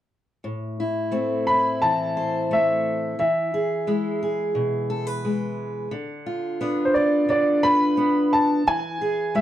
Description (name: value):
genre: folk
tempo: 88 BPM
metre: 4/4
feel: straight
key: A harmonic minor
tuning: A4 = 440 Hz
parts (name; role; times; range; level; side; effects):
- fingerpicked steel-string acoustic guitar; accompaniment; 0.4-9.4 s; A2 to C5; -23 LUFS; equal; none
- clear upright piano; melody; 1.5-9.4 s; C5 to B5; -21 LUFS; equal; slapback echo
room: moderate small room reverb, RT60 0.6 s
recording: dark, warm production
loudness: -20 LUFS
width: side -12 dB against mid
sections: 0.4-9.4 A section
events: none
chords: 0.4 Am; 3.2 E; 5.9 Bdim/D; 8.6 E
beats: | 0.43 1.11 1.80 2.48 | 3.17 3.85 4.54 5.22 | 5.91 6.59 7.28 7.96 | 8.65 9.33